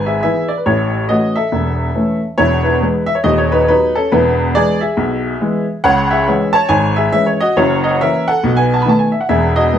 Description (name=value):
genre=jazz, stride piano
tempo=139 BPM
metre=4/4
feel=swing 62% on 8ths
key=unclear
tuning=A4 = 440 Hz
part: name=clear upright piano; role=solo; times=0.0-9.8 s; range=D#1 to B5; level=-12 LUFS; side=equal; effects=none
room=wet studio reverb, RT60 0.6 s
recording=band playing live in one room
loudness=-12 LUFS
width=side -9 dB against mid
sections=0.0-9.8 A section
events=none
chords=0.0 E/G#; 0.7 A; 2.4 E; 3.2 B/D#; 4.1 E; 5.8 C#m; 7.6 F#7; 8.4 B7; 9.3 E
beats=0.23 | 0.66 1.09 1.52 1.95 | 2.38 2.81 3.25 3.68 | 4.11 4.54 4.97 5.40 | 5.83 6.26 6.70 7.13 | 7.56 7.99 8.42 8.85 | 9.28 9.71